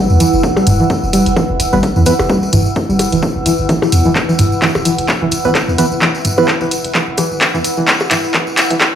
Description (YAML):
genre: minimal techno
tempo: 129 BPM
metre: 4/4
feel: swing 56% on 16ths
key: unclear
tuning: A4 = 440 Hz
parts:
  - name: string-like resonator pluck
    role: riff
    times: 0.0-8.8 s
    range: E3 to G3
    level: -17 LUFS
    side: equal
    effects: chorus, sidechain pumping, dub echo
  - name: warbly tape-like pad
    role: texture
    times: 0.0-9.0 s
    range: E4 to E6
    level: -19 LUFS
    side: equal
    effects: chorus, built-in reverb, sidechain pumping
  - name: punchy sub bass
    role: bass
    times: 0.1-8.8 s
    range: D1 to E2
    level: -18 LUFS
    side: equal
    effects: sidechain pumping
  - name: tambourine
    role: percussion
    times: 0.1-8.9 s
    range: none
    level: -25 LUFS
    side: left 2 dB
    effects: none
  - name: punchy analog drum machine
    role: drums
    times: 0.2-8.9 s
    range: handclaps, hi-hat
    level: -15 LUFS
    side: equal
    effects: small room reverb
  - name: electronic kick drum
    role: drums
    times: 0.4-8.9 s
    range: none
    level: -20 LUFS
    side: equal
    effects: high-pass filter on kick, small room reverb
  - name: electronic percussion blips and toms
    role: percussion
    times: 0.6-8.9 s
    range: none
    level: -17 LUFS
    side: equal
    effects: small room reverb, ping-pong delay
  - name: percussive organ stab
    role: stabs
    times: 1.7-2.1, 5.4-6.5 s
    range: E3 to B4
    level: -17 LUFS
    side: right 2 dB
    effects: chorus, ping-pong delay
room: moderate studio reverb, RT60 0.5 s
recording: played on a big sound system in a bare room, large studio reverb, high-pass filter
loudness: -11 LUFS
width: side -9 dB against mid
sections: 0.0-9.0 A section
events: build-up 0.0-9.0; filter sweep on synth pluck 0.0-9.0; filter sweep 0.0-9.0; drum fill 4.2-9.0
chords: 0.0 E5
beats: | 0.43 0.90 1.36 1.83 | 2.29 2.76 3.23 3.69 | 4.16 4.62 5.09 5.55 | 6.02 6.48 6.95 7.41 | 7.88 8.34 8.81